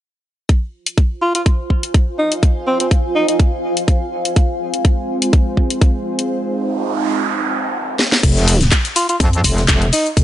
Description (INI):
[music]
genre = bass house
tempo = 124 BPM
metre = 4/4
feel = swing 54% on 16ths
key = F minor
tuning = A4 = 439 Hz
[part]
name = electronic kick drum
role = drums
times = 0.5-10.2 s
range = none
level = -14 LUFS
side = equal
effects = none
[part]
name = garage drum kit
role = drums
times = 0.5-10.2 s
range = crash cymbal, handclaps, hi-hat, shaker, snare drum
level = -18 LUFS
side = left 2 dB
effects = none
[part]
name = granular cloud pad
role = texture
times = 1.4-6.3 s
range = F4 to Ab5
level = -24 LUFS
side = equal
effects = built-in reverb, sidechain pumping
[part]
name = breathy alto saxophone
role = melody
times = 1.2-3.4, 9.0-10.1 s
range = C4 to F4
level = -19 LUFS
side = equal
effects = dub echo
[part]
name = sweeping resonant pad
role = sustained chords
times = 4.4-8.2 s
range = Ab3 to C5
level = -21 LUFS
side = right 2 dB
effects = chorus, sidechain pumping
[part]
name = noise sweep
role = sound effects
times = 6.5-8.2 s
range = none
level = -22 LUFS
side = right 5 dB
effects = none
[part]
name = metallic wobble bass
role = bass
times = 8.2-10.2 s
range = F1 to F2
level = -14 LUFS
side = equal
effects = chorus, tube saturation, sidechain pumping
[part]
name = huge arena drum kit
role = drums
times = 8.2-10.2 s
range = hi-hat, snare drum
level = -29 LUFS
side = left 2 dB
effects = none
[sound]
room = light reverb, small room ambience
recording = nothing above 10.9 kHz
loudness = -14 LUFS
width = side -12 dB against mid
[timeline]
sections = 0.5-8.2 A section; 8.2-10.2 B section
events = break 6.3-8.2; noise sweep 6.5-8.2; drum fill 8.0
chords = 0.5 Fm; 8.2 N.C.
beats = | 0.49 0.98 1.46 1.94 | 2.43 2.91 3.40 3.88 | 4.36 4.85 5.33 5.82 | 6.30 6.78 7.27 7.75 | 8.23 8.72 9.20 9.69 | 10.17